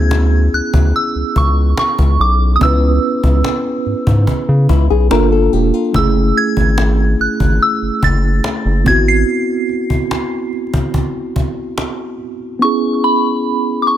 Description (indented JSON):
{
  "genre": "contemporary R&B",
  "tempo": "72 BPM",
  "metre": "4/4",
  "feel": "straight",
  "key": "unclear",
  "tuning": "A4 = 442 Hz",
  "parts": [
    { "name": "soft synth bell", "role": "melody", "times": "0.0-14.0 s", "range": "B5 to B#6", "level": "-18 LUFS", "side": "right 1 dB", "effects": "chorus, phaser, digital delay" },
    { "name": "mellow tine electric piano", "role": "accompaniment", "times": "0.0-14.0 s", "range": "A3 to B4", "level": "-18 LUFS", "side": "right 2 dB", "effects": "slow stereo tremolo" },
    { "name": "round analog bass", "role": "bass", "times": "0.0-9.2 s", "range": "E1 to C#3", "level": "-13 LUFS", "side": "equal", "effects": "none" },
    { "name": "cajon", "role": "drums", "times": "0.1-12.0 s", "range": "none", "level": "-20 LUFS", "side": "left 1 dB", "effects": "none" },
    { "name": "flamenco guitar", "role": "arpeggios", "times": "4.7-6.1 s", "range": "E4 to Bb4", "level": "-18 LUFS", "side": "left 14 dB", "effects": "digital delay" }
  ],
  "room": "studio ambience",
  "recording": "none",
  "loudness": "-12 LUFS",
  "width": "side -11 dB against mid",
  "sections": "0.0-14.0 A section",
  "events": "none",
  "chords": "0.0 C#m7; 5.1 Gm9; 5.9 F#m9; 8.9 G#7#9b13 (rootless); 12.6 C#m7",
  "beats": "0.11 0.94 1.78 | 2.61 3.44 4.28 5.11 | 5.94 6.78 7.61 8.44 | 9.28 10.11 10.94 11.78 | 12.61 13.44"
}